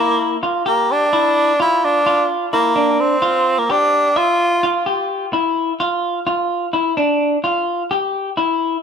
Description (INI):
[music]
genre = progressive instrumental, progressive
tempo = 257 BPM (eighths)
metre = 9/8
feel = straight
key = G dorian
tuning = A4 = 439 Hz
[part]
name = bright tenor saxophone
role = melody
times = 0.0-4.7 s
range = Bb3 to F4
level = -16 LUFS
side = right 1 dB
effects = plate reverb, analog delay
[part]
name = clean electric guitar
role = arpeggios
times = 0.0-8.8 s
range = D4 to E5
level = -18 LUFS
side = left 1 dB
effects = plate reverb
[sound]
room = moderate studio reverb, RT60 0.7 s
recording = none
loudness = -15 LUFS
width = side -7 dB against mid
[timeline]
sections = 0.0-8.8 A section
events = none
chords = 0.0 G7(no3)